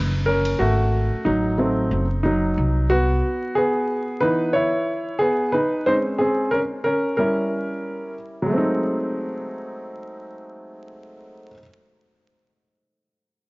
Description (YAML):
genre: hip hop, jazz-hop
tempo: 91 BPM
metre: 4/4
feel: swing 58% on 16ths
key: unclear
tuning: A4 = 440 Hz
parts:
  - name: dark grand piano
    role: accompaniment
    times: 0.0-11.6 s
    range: E3 to C#5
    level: -21 LUFS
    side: equal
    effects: none
  - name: upright bass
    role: bass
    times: 0.0-3.2 s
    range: F#1 to B#1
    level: -22 LUFS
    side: equal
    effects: none
  - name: electronic ride cymbal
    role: drums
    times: 0.5-0.6 s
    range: none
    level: -33 LUFS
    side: equal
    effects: none
room: moderate plate reverb, RT60 2.8 s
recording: worn, warbling old tape, cassette tape, vinyl crackle, warbly pitch drift, nothing above 7.6 kHz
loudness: -19 LUFS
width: side -25 dB against mid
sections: 0.0-8.5 A section; 8.5-11.1 B section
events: grand piano solo 0.0-8.5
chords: 0.0 G#m11 (rootless); 0.6 G#7b9; 3.2 C#m7; 5.9 G#add11; 7.2 Gdim7; 8.5 G#7b9